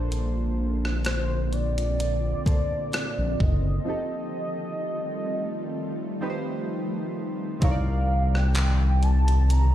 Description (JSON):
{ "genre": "contemporary R&B", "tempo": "64 BPM", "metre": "4/4", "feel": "swing 54% on 16ths", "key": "C dorian", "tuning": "A4 = 440 Hz", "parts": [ { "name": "warm analog keys", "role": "accompaniment", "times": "0.0-9.7 s", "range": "Bb2 to D5", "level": "-33 LUFS", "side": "right 2 dB", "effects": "chorus" }, { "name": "ethereal airy pad", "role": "sustained chords", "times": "0.0-9.7 s", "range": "D3 to G4", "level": "-33 LUFS", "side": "left 1 dB", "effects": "ensemble chorus, built-in reverb" }, { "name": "smooth gliding synth bass", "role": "bass", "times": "0.0-9.7 s", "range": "F#1 to C2", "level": "-22 LUFS", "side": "equal", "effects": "none" }, { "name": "gated 80s digital drum machine", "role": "drums", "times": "0.1-9.7 s", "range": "handclaps, hi-hat, kick drum, rim click", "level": "-27 LUFS", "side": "equal", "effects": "gated reverb, overdrive" }, { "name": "warm velvety synth lead", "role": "melody", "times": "1.1-9.7 s", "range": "C5 to Bb5", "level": "-31 LUFS", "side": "equal", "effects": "chorus, ping-pong delay" } ], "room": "digital ambience", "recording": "played on a big sound system in a bare room, stone room reverb, lossy compression artefacts", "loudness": "-23 LUFS", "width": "side -12 dB against mid", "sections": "0.0-7.6 A section; 7.6-9.7 B section", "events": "break 3.9-7.6", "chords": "0.0 Bbmaj9; 3.9 F9; 7.6 Cm7", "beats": "| 0.12 1.06 1.99 2.93 | 3.87 4.81 5.74 6.68 | 7.62 8.56 9.49" }